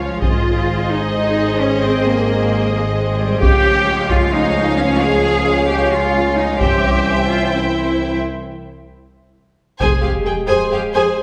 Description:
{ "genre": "cinematic, epic orchestral film score", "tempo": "free time", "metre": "none", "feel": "none", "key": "F minor", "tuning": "A4 = 441 Hz", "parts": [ { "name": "warm symphonic violin section", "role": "melody", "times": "0.0-11.2 s", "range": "Eb5 to Ab5", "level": "-28 LUFS", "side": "equal", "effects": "none" }, { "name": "warm symphonic violin section", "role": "second line", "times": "0.0-11.2 s", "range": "G4 to E5", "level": "-27 LUFS", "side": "equal", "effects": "none" }, { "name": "rich symphonic viola section", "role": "accompaniment", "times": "0.0-11.2 s", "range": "Ab3 to C5", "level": "-26 LUFS", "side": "equal", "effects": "none" }, { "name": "warm French horn section", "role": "sustained chords", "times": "0.0-11.2 s", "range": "E3 to G4", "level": "-24 LUFS", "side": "equal", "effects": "none" }, { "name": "rich symphonic cello section", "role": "bass", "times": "0.0-11.0 s", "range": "F2 to Ab4", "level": "-21 LUFS", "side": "equal", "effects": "none" }, { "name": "warm studio double bass section", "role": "bass", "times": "0.0-10.0 s", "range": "F1 to Db2", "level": "-25 LUFS", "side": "equal", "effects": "none" }, { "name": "taiko ensemble", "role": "drums", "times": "0.2-10.7 s", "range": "none", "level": "-21 LUFS", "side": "equal", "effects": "none" }, { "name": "sub drop", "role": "sound effects", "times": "10.1-11.2 s", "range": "none", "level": "-31 LUFS", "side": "equal", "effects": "none" } ], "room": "wet recital hall reverb, RT60 1.8 s", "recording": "recorded in a church or concert hall", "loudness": "-16 LUFS", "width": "mono", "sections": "0.0-9.8 A section; 9.8-11.2 B section", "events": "break 8.2-9.8; impact 9.8-11.2", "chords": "0.2 Ab; 3.4 Db; 6.6 C; 9.8 Fmadd9" }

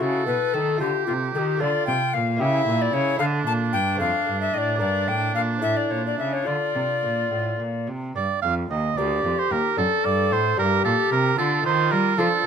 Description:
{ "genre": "classical, baroque-style sonata movement with continuo", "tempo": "75 BPM (dotted quarters)", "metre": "6/8", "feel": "rubato", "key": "D minor, G minor from 8.2 s", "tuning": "A4 = 437 Hz", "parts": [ { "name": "tenor recorder", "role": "melody", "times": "0.0-12.5 s", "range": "F4 to A5", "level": "-24 LUFS", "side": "left 7 dB", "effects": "none" }, { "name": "clear oboe", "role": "second line", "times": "0.0-12.5 s", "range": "D4 to F5", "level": "-25 LUFS", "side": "right 8 dB", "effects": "none" }, { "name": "lute", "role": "accompaniment", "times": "0.0-12.5 s", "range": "D2 to Bb4", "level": "-31 LUFS", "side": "equal", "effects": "none" }, { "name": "rich cello", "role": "bass", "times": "0.0-12.5 s", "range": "D2 to G3", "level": "-26 LUFS", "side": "right 2 dB", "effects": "none" } ], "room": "light reverb", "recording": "none", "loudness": "-20 LUFS", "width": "side -7 dB against mid", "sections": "0.0-8.2 A section; 8.2-12.5 A section", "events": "none", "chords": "0.0 A; 0.8 Dm; 2.4 C#dim7; 3.2 D5; 4.0 F; 4.8 Gm; 5.6 A; 6.5 Dm; 8.2 Gm; 9.8 D/F#; 10.6 Gm; 11.4 Dm" }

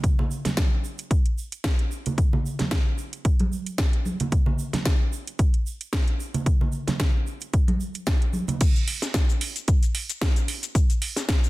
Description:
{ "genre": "nu-disco", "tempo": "112 BPM", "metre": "4/4", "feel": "swing 55% on 16ths", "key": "none", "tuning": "none", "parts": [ { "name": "electronic kick drum", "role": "drums", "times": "0.0-11.4 s", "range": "none", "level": "-21 LUFS", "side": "equal", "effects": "none" }, { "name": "house drum kit", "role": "drums", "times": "0.0-11.5 s", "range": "crash cymbal, hi-hat, shaker, snare drum", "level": "-29 LUFS", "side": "equal", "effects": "none" }, { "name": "egg shaker and congas", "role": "percussion", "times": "0.0-8.6 s", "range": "none", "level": "-29 LUFS", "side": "right 2 dB", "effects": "none" } ], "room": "little or no reverb", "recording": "dense, heavily limited modern master", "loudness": "-22 LUFS", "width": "side -19 dB against mid", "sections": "0.0-8.6 A section; 8.6-11.5 B section", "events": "drop 8.6-11.5", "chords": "none" }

